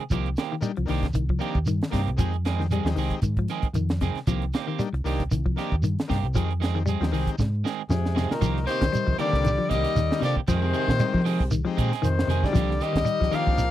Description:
afrobeat; 116 BPM; 4/4; swing 55% on 16ths; C minor; A4 = 441 Hz
semi-hollow electric guitar; arpeggios; 0.0-13.6 s; C3 to G3; -30 LUFS; left 6 dB
electric guitar at the edge of break-up; stabs; 0.0-13.5 s; Eb3 to Ab4; -31 LUFS; right 12 dB
hollow-body short-scale fingered electric bass; bass; 0.1-13.7 s; C2 to F3; -26 LUFS; equal
tight funk drum kit; drums; 0.1-13.7 s; hi-hat, kick drum, snare drum; -28 LUFS; right 1 dB
shekere; percussion; 0.1-13.7 s; -28 LUFS; right 2 dB
combo organ; accompaniment; 0.6-13.7 s; Ab3 to G4; -33 LUFS; left 6 dB
warm trumpet; melody; 7.9-13.7 s; Ab4 to F5; -28 LUFS; left 4 dB
dark trombone section; second line; 7.9-13.7 s; Ab2 to F3; -34 LUFS; left 4 dB
raspy tenor saxophone; second line; 7.9-13.7 s; C3 to Bb3; -34 LUFS; right 6 dB
little or no reverb; dry, close 1970s-style studio recording; -22 LUFS; side -13 dB against mid
0.0-8.4 A section; 8.4-13.7 B section
drum fill 7.4-8.4
0.1 Cm7; 2.2 Fm7; 4.3 Cm7; 6.3 Fm7; 8.4 Cm7; 10.5 Fm7; 12.6 Cm7

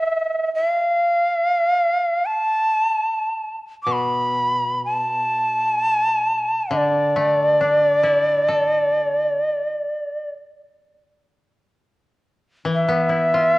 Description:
japanese traditional, Japanese chamber music; free time; D kumoi; A4 = 439 Hz
bright reedy shakuhachi; melody; 0.0-13.6 s; D5 to D6; -18 LUFS; equal
koto; accompaniment; 3.9-13.6 s; B2 to A4; -25 LUFS; left 2 dB
moderate scoring stage reverb, RT60 1.6 s; worn, warbling old tape, cassette tape, warbly pitch drift; -18 LUFS; side -20 dB against mid
0.0-11.3 A section; 11.3-13.6 A section

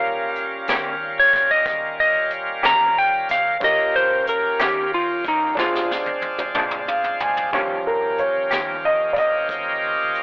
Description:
slow blues; 61 BPM (dotted quarters); 12/8; straight; Eb mixolydian; A4 = 438 Hz
clean lap steel guitar; melody; 0.0-5.9 s; Eb4 to Bb5; -17 LUFS; equal
clear upright piano; accompaniment; 0.0-10.2 s; F3 to Ab5; -24 LUFS; equal
bright tonewheel organ; sustained chords; 0.0-10.2 s; G3 to G4; -26 LUFS; equal; slow rotary speaker, overdrive
vintage muted fingered electric bass; bass; 0.0-10.2 s; Bb1 to Eb3; -48 LUFS; equal
jazz brush drum kit; drums; 0.4-10.2 s; hi-hat, kick drum, snare drum, toms; -29 LUFS; equal; soft clipping on snare
electric guitar through a small old amp; accompaniment; 0.7-8.7 s; Bb2 to G4; -22 LUFS; equal; tremolo, plate reverb
light reverb; blown-out, overdriven recording, overdrive, telephone sound; -17 LUFS; side -26 dB against mid
0.0-7.5 A section; 7.5-10.2 B section
drum fill 5.6-7.5; upright piano fill 6.6-7.5; upright piano solo 7.5-10.2
0.0 Eb7; 5.6 Bb7; 7.5 Eb7

